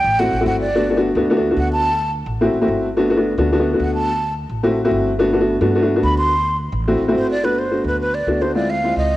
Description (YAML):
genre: Afro-Cuban jazz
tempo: 215 BPM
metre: 4/4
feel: straight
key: G major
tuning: A4 = 440 Hz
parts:
  - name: breathy mellow silver concert flute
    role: melody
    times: 0.0-9.2 s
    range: B4 to C6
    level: -20 LUFS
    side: right 1 dB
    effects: cassette tape
  - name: upright bass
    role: bass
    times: 0.0-9.2 s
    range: G1 to G2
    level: -24 LUFS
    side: equal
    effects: none
  - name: warm upright piano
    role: accompaniment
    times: 0.2-9.1 s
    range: Ab3 to F#4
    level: -17 LUFS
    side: left 1 dB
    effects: cassette tape
room: light reverb, small room reverb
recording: home recording on cassette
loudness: -16 LUFS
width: side -16 dB against mid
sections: 0.0-7.4 A section; 7.4-9.2 B section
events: flute solo 0.0-7.4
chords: 0.0 D7 (rootless); 0.7 Gmaj7; 1.9 D7; 3.0 Gmaj7; 4.1 D7; 5.2 Gmaj7; 6.3 D7; 7.4 Gmaj9; 8.5 Dm7b5